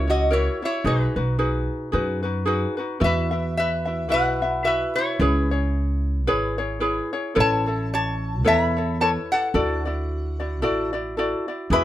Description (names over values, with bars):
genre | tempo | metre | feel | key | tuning
Hawaiian | 110 BPM | 4/4 | swing 57% on 8ths | B major, E major from 3.0 s | A4 = 444 Hz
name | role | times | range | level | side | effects
lap resonator guitar | melody | 0.0-11.8 s | D#4 to B5 | -23 LUFS | left 1 dB | plate reverb
ukulele | accompaniment | 0.0-11.8 s | D#4 to E5 | -25 LUFS | left 1 dB | none
upright bass | bass | 0.0-11.8 s | G#1 to F#2 | -24 LUFS | equal | none
room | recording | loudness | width
light reverb | close, detailed microphones | -20 LUFS | side -13 dB against mid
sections
0.0-3.0 A section; 3.0-11.8 B section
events
none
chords
0.0 F#7; 0.8 B6; 3.0 Esus2; 5.2 C#m7; 7.4 Aadd9; 9.5 Dadd9